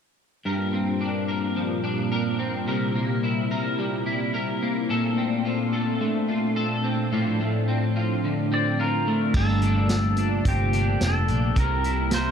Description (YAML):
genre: dream pop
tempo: 108 BPM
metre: 4/4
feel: straight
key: unclear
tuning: A4 = 439 Hz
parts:
  - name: phased analog pad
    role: sustained chords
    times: 0.5-12.3 s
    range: A2 to F4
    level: -28 LUFS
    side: right 1 dB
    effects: phaser, chorus
  - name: electric guitar at the edge of break-up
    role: arpeggios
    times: 0.5-12.3 s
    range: G2 to Bb4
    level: -25 LUFS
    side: left 2 dB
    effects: ensemble chorus, ping-pong delay
  - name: pedal steel guitar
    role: melody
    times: 8.5-12.3 s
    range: G4 to D5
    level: -27 LUFS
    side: left 1 dB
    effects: ping-pong delay
  - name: vintage muted fingered electric bass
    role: bass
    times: 9.3-12.3 s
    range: F1 to C2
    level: -24 LUFS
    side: right 1 dB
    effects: none
  - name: vintage drum kit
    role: drums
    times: 9.3-12.2 s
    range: crash cymbal, hi-hat, kick drum, snare drum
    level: -27 LUFS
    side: right 1 dB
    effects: none
room: light reverb, small room ambience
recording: none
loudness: -22 LUFS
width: side -7 dB against mid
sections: 0.5-9.3 A section; 9.3-12.3 B section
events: none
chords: 0.5 Gm7; 2.7 C7; 4.9 Bbmaj9; 7.1 F6/A; 9.3 Gm11; 11.6 C7